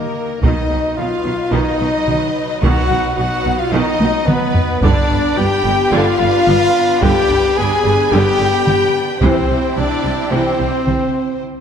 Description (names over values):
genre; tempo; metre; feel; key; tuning
cinematic, epic orchestral film score; 109 BPM; 4/4; straight; unclear; A4 = 440 Hz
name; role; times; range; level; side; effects
rich symphonic violin section; melody; 0.0-11.4 s; Bb4 to Ab5; -24 LUFS; left 2 dB; none
mellow hollow concert flute; second line; 0.0-11.4 s; Bb4 to Ab5; -26 LUFS; equal; none
warm symphonic violin section; second line; 0.0-11.4 s; Bb4 to Ab5; -27 LUFS; left 2 dB; none
dark French horn section; sustained chords; 0.0-11.4 s; Bb3 to Ab4; -19 LUFS; left 4 dB; none
rich symphonic string section; sustained chords; 0.0-11.4 s; F#3 to B5; -26 LUFS; equal; none
clear trumpet; stabs; 0.0-11.4 s; Bb3 to Ab4; -22 LUFS; right 2 dB; none
rich studio viola section; accompaniment; 0.4-11.0 s; C3 to C4; -24 LUFS; right 1 dB; none
rich symphonic cello section; bass; 0.4-10.9 s; G2 to C3; -23 LUFS; right 3 dB; none
rich symphonic double bass section; bass; 0.4-10.9 s; G1 to C2; -24 LUFS; right 4 dB; none
taiko ensemble; drums; 0.4-11.1 s; none; -20 LUFS; equal; none
room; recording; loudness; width
wet concert hall reverb, RT60 2.1 s; none; -13 LUFS; side -8 dB against mid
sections
0.0-11.6 A section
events
drum fill 4.0-4.8; break 11.4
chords
0.4 B; 4.8 G; 9.2 C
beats
| 0.42 0.97 1.52 2.07 | 2.62 3.17 3.72 4.27 | 4.82 5.37 5.92 6.47 | 7.02 7.57 8.12 8.67 | 9.22 9.77 10.32 10.87 | 11.42